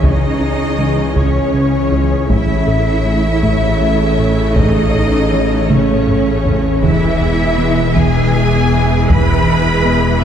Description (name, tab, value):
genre	cinematic, hybrid orchestral and electronic film score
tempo	53 BPM (dotted quarters)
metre	6/8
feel	straight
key	unclear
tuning	A4 = 437 Hz
part	clear symphonic violin section	second line	0.0-10.2 s	C#5 to B5	-21 LUFS	left 3 dB	none
part	rich studio viola section	accompaniment	0.0-10.2 s	C#3 to A3	-21 LUFS	right 1 dB	none
part	warm analog pad	sustained chords	0.0-10.2 s	E3 to E5	-20 LUFS	left 1 dB	chorus
part	soft round pluck	arpeggios	0.0-10.1 s	C#3 to A4	-23 LUFS	right 2 dB	none
part	round analog bass	riff	0.0-10.1 s	C#2 to A3	-20 LUFS	right 2 dB	none
part	bright symphonic double bass section	bass	0.0-10.2 s	E1 to C#2	-20 LUFS	equal	none
part	rich symphonic cello section	bass	0.0-10.2 s	C#4 to B4	-20 LUFS	right 2 dB	none
part	saturated sub bass	bass	0.0-10.2 s	E1 to C#2	-22 LUFS	equal	none
part	taiko ensemble	drums	0.0-10.2 s	none	-19 LUFS	equal	none
part	mellow French horn section	sustained chords	0.8-10.0 s	G#3 to E4	-26 LUFS	left 2 dB	none
room	wet scoring stage reverb, RT60 1.8 s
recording	heard from further back in the room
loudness	-11 LUFS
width	side -8 dB against mid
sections	0.0-10.2 A section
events	drum fill 5.7-6.8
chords	0.0 C#m; 2.3 A; 6.8 E